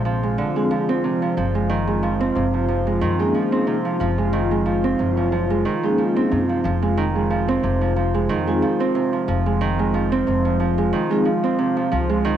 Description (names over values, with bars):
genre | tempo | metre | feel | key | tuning
trip hop | 91 BPM | 4/4 | swing 55% on 16ths | F phrygian | A4 = 440 Hz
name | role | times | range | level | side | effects
warbly tape-like pad | sustained chords | 0.0-12.4 s | F3 to F4 | -25 LUFS | left 3 dB | chorus, built-in reverb, phaser, vintage 12-bit sampler grit, cassette tape
Celtic harp | arpeggios | 0.0-12.4 s | C3 to C4 | -21 LUFS | right 4 dB | cassette tape, analog delay
upright bass | bass | 0.0-12.4 s | F1 to Gb2 | -24 LUFS | left 2 dB | none
vibraphone with soft mallets | accompaniment | 0.6-11.3 s | Bb3 to Ab4 | -25 LUFS | left 2 dB | harmonic tremolo, cassette tape, tape echo
room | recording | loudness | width
moderate spring reverb, RT60 2.9 s | home recording on cassette | -18 LUFS | side -10 dB against mid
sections
0.0-6.6 A section; 6.6-12.4 B section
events
none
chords
0.0 Bb7; 1.4 Gb6; 6.6 Fm7